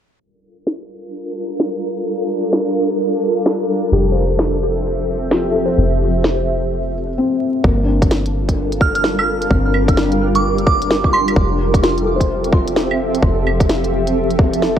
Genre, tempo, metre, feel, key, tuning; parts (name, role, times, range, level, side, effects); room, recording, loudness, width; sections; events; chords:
future garage; 129 BPM; 4/4; swing 62% on 16ths; G dorian; A4 = 440 Hz
granular cloud pad; sustained chords; 1.1-14.8 s; F3 to E5; -19 LUFS; equal; built-in reverb, vintage 12-bit sampler grit, sidechain pumping
organic electronic drum kit; drums; 0.7-14.7 s; claves, hi-hat, snare drum; -19 LUFS; equal; vintage 12-bit sampler grit
felt-muted upright piano; accompaniment; 3.9-14.8 s; Bb3 to C5; -22 LUFS; left 3 dB; sidechain pumping, tape echo
soft 808-style bass; bass; 3.9-14.8 s; F1 to G1; -20 LUFS; equal; tube saturation
electronic kick drum; drums; 7.6-14.8 s; -17 LUFS; equal; overdrive, vintage 12-bit sampler grit
glassy synth bell; melody; 8.8-11.4 s; C6 to F6; -21 LUFS; right 3 dB; chorus, tremolo, tape echo
light reverb, digital ambience; echo-heavy mix, vinyl crackle, low-pass filter; -14 LUFS; side -9 dB against mid
0.2-7.6 A section; 7.6-14.8 B section
filter sweep 0.2-7.6
0.2 Gm7; 3.9 Fmaj7; 7.6 Gm7; 11.4 Fmaj7